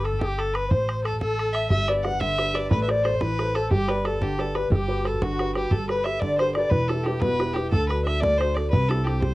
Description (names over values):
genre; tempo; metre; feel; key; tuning
celtic folk, Celtic jig; 120 BPM (dotted quarters); 6/8; straight; G major; A4 = 439 Hz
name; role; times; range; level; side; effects
warm fiddle; melody; 0.0-9.3 s; F#4 to F#5; -28 LUFS; equal; cassette tape
wooden flute; second line; 0.0-9.3 s; F#4 to F#5; -28 LUFS; left 2 dB; cassette tape
upright bass; bass; 0.0-9.3 s; E1 to D2; -28 LUFS; equal; none
bodhran; percussion; 0.1-9.3 s; none; -26 LUFS; right 1 dB; none
dark upright piano; accompaniment; 1.7-9.3 s; B2 to D5; -28 LUFS; right 2 dB; cassette tape
room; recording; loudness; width
moderate studio ambience, RT60 0.5 s; home recording on cassette; -21 LUFS; side -18 dB against mid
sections
0.0-5.7 A section; 5.7-9.3 B section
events
none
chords
0.0 Gadd9; 0.7 Am; 1.7 G; 2.7 Amadd9; 3.7 G; 4.7 Gmaj7; 5.7 Gadd9; 6.7 Em; 7.7 D; 8.7 C